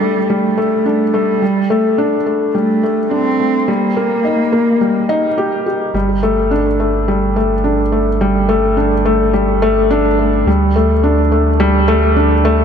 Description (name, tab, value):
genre	piano and strings electronica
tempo	106 BPM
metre	4/4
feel	straight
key	G minor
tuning	A4 = 440 Hz
part	warm cello	melody	0.0-5.4 s	G3 to C4	-17 LUFS	right 2 dB	digital delay
part	felt-muted upright piano	riff	0.0-12.6 s	G3 to G4	-13 LUFS	left 1 dB	digital delay
part	round analog bass	bass	5.9-12.6 s	G1 to D2	-17 LUFS	equal	none
room	moderate lush hall reverb, RT60 2.6 s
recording	dark, warm production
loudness	-12 LUFS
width	side -7 dB against mid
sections	0.0-5.9 A section; 5.9-12.6 B section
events	build-up 5.9-12.6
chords	0.0 Gsus2; 3.7 Eb; 5.9 Gsus2; 10.5 Dsus4